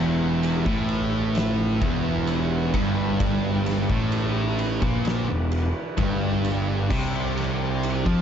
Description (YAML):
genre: stoner and doom metal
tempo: 65 BPM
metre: 4/4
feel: straight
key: E minor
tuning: A4 = 440 Hz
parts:
  - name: overdriven tonewheel organ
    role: sustained chords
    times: 0.0-8.2 s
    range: C3 to B4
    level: -37 LUFS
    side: equal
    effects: none
  - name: heavy high-gain guitar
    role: riff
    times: 0.0-8.2 s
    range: E2 to F3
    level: -30 LUFS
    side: right 1 dB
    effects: distortion
  - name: thick fuzz guitar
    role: riff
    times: 0.0-8.2 s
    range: E2 to F3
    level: -28 LUFS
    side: left 8 dB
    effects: distortion
  - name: thick fuzz guitar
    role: riff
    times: 0.0-8.2 s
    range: E2 to F3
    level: -26 LUFS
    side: right 7 dB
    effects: distortion
  - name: fuzz picked electric bass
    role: bass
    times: 0.0-8.2 s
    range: E1 to F2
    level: -29 LUFS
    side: equal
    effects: overdrive
  - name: oversized low-tuned drum kit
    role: drums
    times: 0.4-8.2 s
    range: crash cymbal, kick drum, ride cymbal, snare drum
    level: -28 LUFS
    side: equal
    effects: none
room: light reverb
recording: dark, warm production, nothing above 7.7 kHz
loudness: -21 LUFS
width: side -8 dB against mid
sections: 0.0-8.2 A section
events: none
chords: 0.0 Em; 6.9 C5